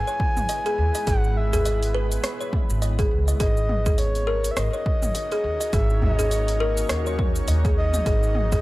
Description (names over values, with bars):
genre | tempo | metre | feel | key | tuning
organic downtempo | 103 BPM | 4/4 | swing 58% on 16ths | unclear | A4 = 442 Hz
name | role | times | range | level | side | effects
breathy flute-like synth lead | melody | 0.0-8.6 s | C#5 to G#5 | -29 LUFS | equal | chorus, analog delay
granular cloud pad | sustained chords | 0.0-8.6 s | G#3 to C#5 | -34 LUFS | equal | built-in reverb, sidechain pumping
kalimba | arpeggios | 0.0-8.6 s | G#4 to D#5 | -28 LUFS | left 1 dB | low-pass filter, tape echo
deep house drum kit | drums | 0.1-8.6 s | hi-hat, rim click, shaker, toms | -31 LUFS | equal | overdrive
electronic kick drum | drums | 0.2-8.6 s | none | -24 LUFS | equal | overdrive
upright bass | bass | 0.4-8.6 s | G#1 to D#2 | -24 LUFS | equal | none
udu | percussion | 1.5-8.6 s | none | -26 LUFS | right 1 dB | none
room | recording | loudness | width
digital ambience | dry, gritty hardware recording | -20 LUFS | side -18 dB against mid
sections
0.0-8.6 A section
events
none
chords
0.0 Emaj7/G#; 3.4 D#m7/G#; 8.1 G#m7